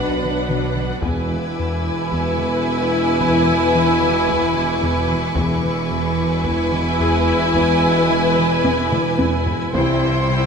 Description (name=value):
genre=cinematic, suspense film score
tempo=55 BPM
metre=4/4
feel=straight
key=unclear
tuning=A4 = 442 Hz
part: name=rich studio violin section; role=melody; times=0.0-10.5 s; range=F#5 to G#5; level=-25 LUFS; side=right 2 dB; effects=none
part: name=warm studio violin section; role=second line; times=0.0-10.5 s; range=B4 to C5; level=-24 LUFS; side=left 2 dB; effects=none
part: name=rich studio viola section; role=accompaniment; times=0.0-10.5 s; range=D4 to E4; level=-24 LUFS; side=equal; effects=none
part: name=clear trombone section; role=sustained chords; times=0.0-10.2 s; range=G2 to G#3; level=-30 LUFS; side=right 4 dB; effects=none
part: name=mellow French horn section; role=sustained chords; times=0.0-10.2 s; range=B3 to E4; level=-25 LUFS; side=left 3 dB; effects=none
part: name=soft additive organ-like pad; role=sustained chords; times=0.0-10.5 s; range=B4 to G#5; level=-31 LUFS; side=equal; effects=none
part: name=smooth synth bass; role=riff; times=0.0-10.5 s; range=E2 to E3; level=-25 LUFS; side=left 2 dB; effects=none
part: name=clear studio cello section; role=bass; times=0.0-10.5 s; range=E2 to C3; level=-26 LUFS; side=right 4 dB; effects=none
part: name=rich studio double bass section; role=bass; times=0.0-10.5 s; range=E1 to C2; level=-26 LUFS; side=right 2 dB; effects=none
part: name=concert harp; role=texture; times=0.0-10.3 s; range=G#4 to G#5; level=-30 LUFS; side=left 11 dB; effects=none
part: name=taiko ensemble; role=drums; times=0.2-10.5 s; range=none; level=-27 LUFS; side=equal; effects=none
part: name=rich studio violin section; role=texture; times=1.0-9.1 s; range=B5 to D6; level=-30 LUFS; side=left 3 dB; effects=none
room=moderate scoring stage reverb, RT60 1.9 s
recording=none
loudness=-16 LUFS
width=side -6 dB against mid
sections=0.0-10.5 A section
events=drum fill 8.6-9.7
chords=0.0 Bm; 1.0 E; 9.7 C